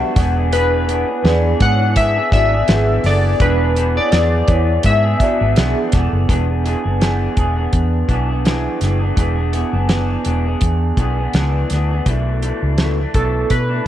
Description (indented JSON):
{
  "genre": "indie pop, bedroom pop",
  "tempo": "83 BPM",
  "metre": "4/4",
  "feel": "swing 55% on 16ths",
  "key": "unclear",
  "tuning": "A4 = 440 Hz",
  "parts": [
    { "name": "electric guitar through a small old amp", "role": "accompaniment", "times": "0.0-13.9 s", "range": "B2 to G#4", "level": "-21 LUFS", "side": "right 1 dB", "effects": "lush chorus, vibrato effect" },
    { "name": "vibraphone with soft mallets", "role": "second line", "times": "0.2-6.1 s", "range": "D4 to F#5", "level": "-24 LUFS", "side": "right 2 dB", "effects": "analog chorus, slapback echo" },
    { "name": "vintage muted fingered electric bass", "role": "bass", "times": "0.2-13.8 s", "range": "E1 to B2", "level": "-18 LUFS", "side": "equal", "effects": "none" },
    { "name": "damped 70s drum kit", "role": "drums", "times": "0.2-13.7 s", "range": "hi-hat, kick drum, snare drum", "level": "-18 LUFS", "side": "equal", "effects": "none" },
    { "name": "warm analog keys", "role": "melody", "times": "0.5-5.5, 13.2-13.9 s", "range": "A4 to F#5", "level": "-18 LUFS", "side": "left 2 dB", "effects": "analog chorus, slapback echo" }
  ],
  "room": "light reverb",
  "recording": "worn, warbling old tape, cassette tape, warbly pitch drift",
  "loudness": "-14 LUFS",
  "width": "side -12 dB against mid",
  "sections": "0.0-6.3 A section; 6.3-12.1 B section; 12.1-13.9 C section",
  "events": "none",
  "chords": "0.2 E7; 12.1 Bm11",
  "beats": "| 0.52 1.24 1.97 2.69 | 3.41 4.13 4.85 5.57 | 6.29 7.01 7.73 8.45 | 9.17 9.90 10.62 11.34 | 12.06 12.78 13.50"
}